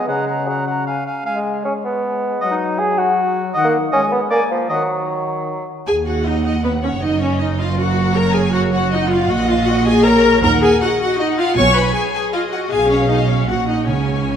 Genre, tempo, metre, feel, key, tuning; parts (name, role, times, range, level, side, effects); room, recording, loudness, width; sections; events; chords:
quick classical-period movement for symphony orchestra; 157 BPM; 3/4; straight; Eb minor; A4 = 439 Hz
clear oboe; second line; 0.0-4.8 s; D5 to F#5; -24 LUFS; right 1 dB
silver concert flute; second line; 0.0-4.9 s; Gb5 to A#5; -25 LUFS; left 3 dB
warm bassoon; accompaniment; 0.0-5.7 s; F3 to Ab4; -19 LUFS; right 1 dB
warm French horn section; sustained chords; 0.0-5.7 s; C#3 to Bb3; -25 LUFS; left 5 dB
rich chamber violin section; second line; 5.9-14.4 s; Cb5 to C#6; -24 LUFS; left 2 dB
rich studio viola section; accompaniment; 5.9-14.4 s; Cb4 to C#5; -17 LUFS; left 1 dB
clear studio double bass section; bass; 5.9-14.4 s; Gb1 to Eb2; -21 LUFS; right 3 dB
rich chamber cello section; bass; 5.9-14.4 s; Eb2 to D#3; -20 LUFS; right 2 dB
warm chamber violin section; melody; 6.3-14.4 s; Bb4 to G#5; -26 LUFS; left 2 dB
wet scoring stage reverb, RT60 1.9 s; -15 LUFS; side -8 dB against mid
0.0-5.9 A section; 5.9-14.4 B section
0.1 F#/C#; 0.9 C#; 1.3 Fdim/Ab (rootless); 2.4 Ebm/Gb; 3.5 Ebm; 3.9 Abm; 4.3 Bb7; 4.7 Ebm; 7.0 Gb5; 9.3 Gbmaj13/Bb; 10.4 D#m; 11.6 G#m/B; 13.5 F#/A#